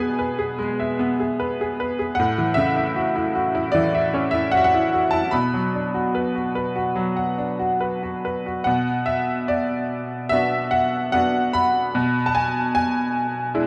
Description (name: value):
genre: classical, lyrical solo piano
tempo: 74 BPM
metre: 4/4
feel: uneven beats, rubato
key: B dorian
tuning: A4 = 440 Hz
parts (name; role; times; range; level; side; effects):
- bright upright piano; solo; 0.0-13.7 s; A2 to B5; -22 LUFS; equal; none
room: moderate recital hall reverb, RT60 1.5 s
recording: dark, warm production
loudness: -22 LUFS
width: mono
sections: 0.0-8.7 A section; 8.7-13.7 A section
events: none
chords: 0.0 E/B; 2.2 A6; 5.3 Bm; 12.0 E/B (rootless)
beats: 0.58 1.39 | 2.17 2.95 3.74 4.53 | 5.33 6.13 6.95 7.80 | 8.66 9.49 10.31 11.14 | 11.95 12.75 13.55